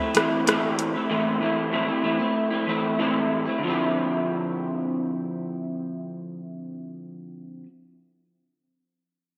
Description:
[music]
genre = indie pop, bedroom pop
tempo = 95 BPM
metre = 4/4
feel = straight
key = D minor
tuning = A4 = 439 Hz
[part]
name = electric guitar through a small old amp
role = accompaniment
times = 0.0-7.7 s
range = A2 to E4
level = -26 LUFS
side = equal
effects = analog chorus, warbly pitch drift
[part]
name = soft vintage rhythm box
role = drums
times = 0.1-0.9 s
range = hi-hat, rim click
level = -26 LUFS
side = equal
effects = gated reverb
[sound]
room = moderate lush hall reverb, RT60 2.6 s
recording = bright 1980s-style digital production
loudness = -25 LUFS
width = mono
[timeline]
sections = 0.0-3.6 A section; 3.6-6.1 B section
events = none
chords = 0.0 Am; 3.6 Dm9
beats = 0.46 | 1.09 1.73 2.36 2.99 | 3.62 4.25 4.88 5.52

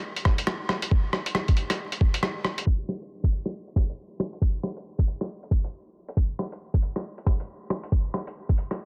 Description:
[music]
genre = future garage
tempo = 137 BPM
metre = 4/4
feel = swing 61% on 16ths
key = none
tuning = none
[part]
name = lo-fi sampler-style drum kit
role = drums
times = 0.2-8.8 s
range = hi-hat, rim click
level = -32 LUFS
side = equal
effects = low-pass filter on hats, soft clipping on snare, low-pass filter on snare, low-pass filter on room
[part]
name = electronic kick drum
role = drums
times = 0.3-8.6 s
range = none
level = -24 LUFS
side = equal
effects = none
[sound]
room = little or no reverb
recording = dense, heavily limited modern master, vinyl crackle, low-pass filter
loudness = -27 LUFS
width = mono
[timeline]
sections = 0.0-2.7 A section; 2.7-8.9 B section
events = filter sweep on drum 2.7-8.9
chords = none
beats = 0.04 0.48 | 0.92 1.35 1.79 2.23 | 2.67 3.10 3.54 3.98 | 4.42 4.86 5.29 5.73 | 6.17 6.61 7.05 7.48 | 7.92 8.36

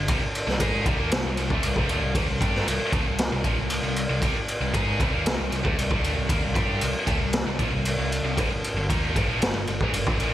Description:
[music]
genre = hard rock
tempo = 116 BPM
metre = 4/4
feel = straight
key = unclear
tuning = A4 = 440 Hz
[part]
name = scooped high-gain guitar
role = riff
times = 0.0-10.3 s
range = G2 to Ab4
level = -28 LUFS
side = equal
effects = distortion, slapback echo
[part]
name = picked electric bass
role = bass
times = 0.0-10.3 s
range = G1 to Ab2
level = -29 LUFS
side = equal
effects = none
[part]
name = raw garage drum kit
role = drums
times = 0.1-10.3 s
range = kick drum, ride cymbal, snare drum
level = -25 LUFS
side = equal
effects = none
[sound]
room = light reverb, studio ambience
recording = none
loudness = -22 LUFS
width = side -13 dB against mid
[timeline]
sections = 0.0-10.3 A section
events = none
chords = 0.1 C5; 8.4 Gm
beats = | 0.08 0.59 1.11 1.63 | 2.15 2.67 3.19 3.70 | 4.22 4.74 5.26 5.78 | 6.30 6.82 7.34 7.86 | 8.38 8.89 9.41 9.94

